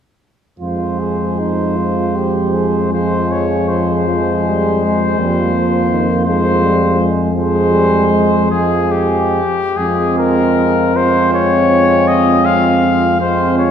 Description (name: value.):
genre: classical, hymn-like piece for brass band.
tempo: 45-56 BPM (dotted quarters).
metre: 12/8.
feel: rubato.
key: F minor.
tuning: A4 = 440 Hz.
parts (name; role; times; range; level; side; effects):
clear cornet; melody; 0.6-13.7 s; G4 to F5; -17 LUFS; left 4 dB; none.
mellow flugelhorn; second line; 0.6-13.7 s; Eb4 to Ab4; -20 LUFS; right 5 dB; none.
clear trombone; accompaniment; 0.6-13.7 s; Eb3 to Ab3; -21 LUFS; equal; none.
warm euphonium; accompaniment; 0.6-13.7 s; F3 to C4; -19 LUFS; equal; none.
mellow tuba; bass; 0.6-13.7 s; F2; -18 LUFS; equal; none.
room: wet scoring stage reverb, RT60 1.9 s.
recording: heard from further back in the room.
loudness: -12 LUFS.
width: side -8 dB against mid.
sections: 0.6-9.8 A section; 9.8-13.7 B section.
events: none.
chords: 0.6 Fm.